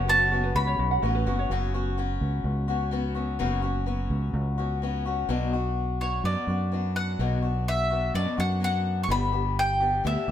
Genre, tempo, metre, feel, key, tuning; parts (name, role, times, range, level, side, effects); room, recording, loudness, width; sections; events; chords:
folk; 126 BPM; 4/4; straight; B minor; A4 = 440 Hz
bowl-back mandolin; melody; 0.0-1.2, 6.0-10.3 s; C#5 to C#6; -26 LUFS; equal
picked swing-style acoustic guitar; accompaniment; 0.0-10.3 s; F#2 to G4; -30 LUFS; left 6 dB
dark symphonic string section; sustained chords; 0.0-1.5 s; C#3 to F#4; -42 LUFS; equal
ukulele; arpeggios; 0.0-1.5 s; F#4 to F#5; -31 LUFS; right 6 dB
fingered electric bass; bass; 0.0-10.3 s; F#1 to F#2; -27 LUFS; right 1 dB
light reverb; band playing live in one room; -24 LUFS; side -10 dB against mid
0.0-1.5 A section; 1.5-5.3 B section; 5.3-10.3 C section
0.0 F#sus4; 5.3 Bm; 9.1 G